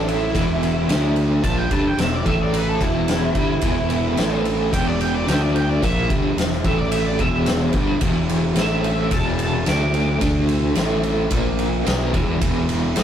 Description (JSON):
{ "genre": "blues rock power trio and southern rock", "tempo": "109 BPM", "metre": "4/4", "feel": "straight", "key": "E minor", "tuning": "A4 = 440 Hz", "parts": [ { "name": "octave-fuzz lead guitar", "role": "melody", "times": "0.0-13.0 s", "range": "E4 to D6", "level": "-26 LUFS", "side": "equal", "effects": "distortion" }, { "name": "biting overdriven guitar", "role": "riff", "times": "0.0-13.0 s", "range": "E2 to D4", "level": "-21 LUFS", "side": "right 1 dB", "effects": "tremolo" }, { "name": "fuzz fingered electric bass", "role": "bass", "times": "0.0-13.0 s", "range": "E1 to D2", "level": "-24 LUFS", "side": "equal", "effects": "overdrive" }, { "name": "oversized low-tuned drum kit", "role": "drums", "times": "0.1-13.0 s", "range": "kick drum, ride cymbal, snare drum", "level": "-23 LUFS", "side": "equal", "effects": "none" } ], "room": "light reverb", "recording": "rough rehearsal-room recording, warm saturation", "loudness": "-17 LUFS", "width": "side -9 dB against mid", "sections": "0.0-13.0 A section", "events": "lead electric guitar solo 0.0-13.0", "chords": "0.3 E5; 0.9 D5; 1.4 Em; 2.3 A5; 2.8 Em; 4.2 A5; 4.7 E5; 5.3 D5; 5.8 Em; 6.6 A5; 7.2 Em; 8.6 A5; 9.1 E5; 9.7 D5; 10.8 A5; 11.3 A#5; 11.9 E5" }